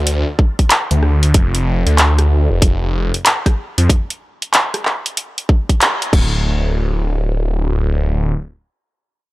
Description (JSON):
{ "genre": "glitch hop", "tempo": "94 BPM", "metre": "4/4", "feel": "swing 64% on 16ths", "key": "D minor pentatonic", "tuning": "A4 = 440 Hz", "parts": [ { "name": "phased detuned saw bass", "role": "bass", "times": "0.0-8.3 s", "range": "D1 to F2", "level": "-14 LUFS", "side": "equal", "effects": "phaser" }, { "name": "drum and bass drum kit", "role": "drums", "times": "0.1-6.3 s", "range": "crash cymbal, handclaps, hi-hat, rim click", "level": "-16 LUFS", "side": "equal", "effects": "none" }, { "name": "electronic kick drum", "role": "drums", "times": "0.4-6.3 s", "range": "none", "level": "-13 LUFS", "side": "equal", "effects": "none" } ], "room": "little or no reverb", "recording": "dry, gritty hardware recording", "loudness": "-13 LUFS", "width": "side -19 dB against mid", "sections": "0.0-6.5 A section; 6.5-9.0 B section", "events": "drop 0.0-6.5; band accent 5.8-6.1", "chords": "none" }